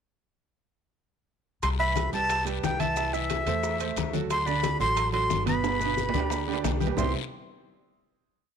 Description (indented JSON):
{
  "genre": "latin, salsa",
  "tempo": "180 BPM",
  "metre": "4/4",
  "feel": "straight",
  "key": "C major",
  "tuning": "A4 = 439 Hz",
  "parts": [
    { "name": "breathy bright jazz flute", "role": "melody", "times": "1.6-7.1 s", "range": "E5 to C6", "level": "-28 LUFS", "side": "equal", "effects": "none" },
    { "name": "upright bass", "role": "bass", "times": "1.6-7.1 s", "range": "G1 to E2", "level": "-32 LUFS", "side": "left 1 dB", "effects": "none" },
    { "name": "bongos", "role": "percussion", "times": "1.6-7.1 s", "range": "none", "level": "-36 LUFS", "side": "left 13 dB", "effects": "none" },
    { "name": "congas", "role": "percussion", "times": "1.6-7.1 s", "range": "none", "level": "-34 LUFS", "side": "left 12 dB", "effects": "none" },
    { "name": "guiro", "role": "percussion", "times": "1.6-7.0 s", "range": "none", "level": "-41 LUFS", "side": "left 16 dB", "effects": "none" },
    { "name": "maracas", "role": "percussion", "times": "1.6-7.1 s", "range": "none", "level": "-44 LUFS", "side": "right 15 dB", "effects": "none" },
    { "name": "timbales", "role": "percussion", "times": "1.6-7.1 s", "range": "none", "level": "-36 LUFS", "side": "right 12 dB", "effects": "none" },
    { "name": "clear grand piano", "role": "accompaniment", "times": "1.8-7.1 s", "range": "B2 to E5", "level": "-31 LUFS", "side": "right 10 dB", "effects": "none" }
  ],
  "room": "light reverb, studio reverb",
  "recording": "1960s-style stereo with parts hard left and right",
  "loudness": "-24 LUFS",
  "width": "side -7 dB against mid",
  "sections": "1.6-7.0 verse; 7.0-8.3 final chord",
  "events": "drum fill 5.6-7.0",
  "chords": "1.6 Cmaj7; 3.0 Am/C; 4.3 D7; 5.6 G; 7.0 Cmaj7"
}